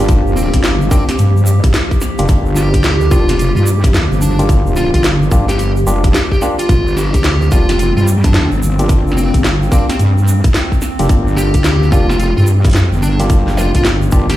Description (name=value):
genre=glitch hop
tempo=109 BPM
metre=4/4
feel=swing 63% on 16ths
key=G minor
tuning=A4 = 440 Hz
part: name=warbly tape-like pad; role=sustained chords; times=0.0-14.4 s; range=F3 to G4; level=-23 LUFS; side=equal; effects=chorus, built-in reverb, sidechain pumping
part: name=barky tine electric piano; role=stabs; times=0.0-14.3 s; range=Bb3 to G4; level=-21 LUFS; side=equal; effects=vintage 12-bit sampler grit, sidechain pumping, dub echo
part: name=wobble bass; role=bass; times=0.0-14.4 s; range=F1 to G2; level=-13 LUFS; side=equal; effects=chorus, tube saturation
part: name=drum and bass drum kit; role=drums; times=0.1-14.4 s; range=hi-hat, snare drum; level=-19 LUFS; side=equal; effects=none
part: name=electronic kick drum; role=drums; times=0.1-14.3 s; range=none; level=-12 LUFS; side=equal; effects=none
part: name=egg shaker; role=percussion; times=0.1-14.4 s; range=none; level=-30 LUFS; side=right 4 dB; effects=none
part: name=fuzz lead guitar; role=melody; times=0.4-14.4 s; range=C4 to G4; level=-21 LUFS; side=equal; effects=distortion, dub echo
room=little or no reverb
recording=played on a big sound system in a bare room, large studio reverb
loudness=-10 LUFS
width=side -14 dB against mid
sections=0.0-14.4 A section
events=none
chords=0.0 Gm7